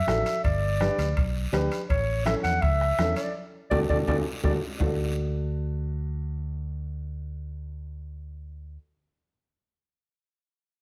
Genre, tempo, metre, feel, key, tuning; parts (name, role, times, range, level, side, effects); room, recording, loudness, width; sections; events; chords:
latin, cumbia; 165 BPM; 4/4; straight; D major; A4 = 444 Hz
mellow clarinet; melody; 0.0-4.5 s; C#5 to F#5; -30 LUFS; equal
dark upright piano; accompaniment; 0.1-8.8 s; C#4 to B4; -34 LUFS; equal
fingered electric bass; bass; 0.1-8.8 s; G1 to E2; -32 LUFS; equal
bombo; percussion; 0.1-4.9 s; -31 LUFS; equal
congas; percussion; 0.1-4.9 s; -37 LUFS; equal
guiro; percussion; 0.1-4.9 s; -45 LUFS; equal
timbales; percussion; 0.1-4.9 s; -41 LUFS; equal
light reverb; -27 LUFS; mono
0.0-4.8 A section; 4.8-7.7 B section
band accent 3.3-4.8; drum fill 3.7-4.8
0.4 G; 1.9 A; 3.3 D